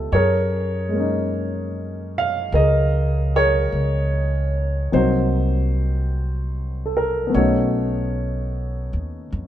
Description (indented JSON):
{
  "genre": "jazz ballad",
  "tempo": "50 BPM",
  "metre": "4/4",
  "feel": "swing 68% on 8ths",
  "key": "unclear",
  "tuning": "A4 = 440 Hz",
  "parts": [
    { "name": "warm baby grand piano", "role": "accompaniment", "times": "0.0-9.5 s", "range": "F3 to F5", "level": "-22 LUFS", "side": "equal", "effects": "none" },
    { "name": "upright bass", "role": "bass", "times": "0.0-9.5 s", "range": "B1 to Gb2", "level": "-22 LUFS", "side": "equal", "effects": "none" }
  ],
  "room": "light reverb",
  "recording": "dark, warm production",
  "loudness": "-19 LUFS",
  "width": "side -11 dB against mid",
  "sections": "0.0-9.5 A section",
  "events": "none",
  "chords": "0.1 Gb69; 4.9 Cm7b5; 7.3 B9"
}